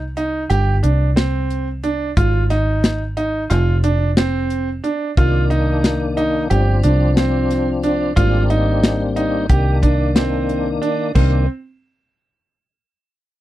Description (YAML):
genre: progressive instrumental, band music in an uneven meter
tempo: 180 BPM (eighths)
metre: 9/8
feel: straight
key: C minor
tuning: A4 = 441 Hz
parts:
  - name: fingered electric bass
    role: bass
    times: 0.0-11.5 s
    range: F1 to C2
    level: -18 LUFS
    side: equal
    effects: none
  - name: clear concert grand piano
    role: arpeggios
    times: 0.2-11.5 s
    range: C4 to G4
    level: -21 LUFS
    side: right 3 dB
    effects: none
  - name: tight funk drum kit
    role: drums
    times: 0.2-11.3 s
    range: crash cymbal, hi-hat, kick drum, snare drum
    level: -17 LUFS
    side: equal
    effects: none
  - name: tonewheel organ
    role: accompaniment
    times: 5.2-11.5 s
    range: Eb3 to D4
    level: -21 LUFS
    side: left 3 dB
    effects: overdrive, chorus vibrato, slow rotary speaker
room: little or no reverb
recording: dry, close 1970s-style studio recording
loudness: -15 LUFS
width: side -15 dB against mid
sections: 0.0-11.2 A section; 11.2-13.4 B section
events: none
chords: 0.0 Cm; 0.5 Gsus4; 2.2 Ab5; 3.5 F5; 5.2 Cm7; 6.5 G7sus4; 8.2 Abmaj9#11; 9.5 Cm7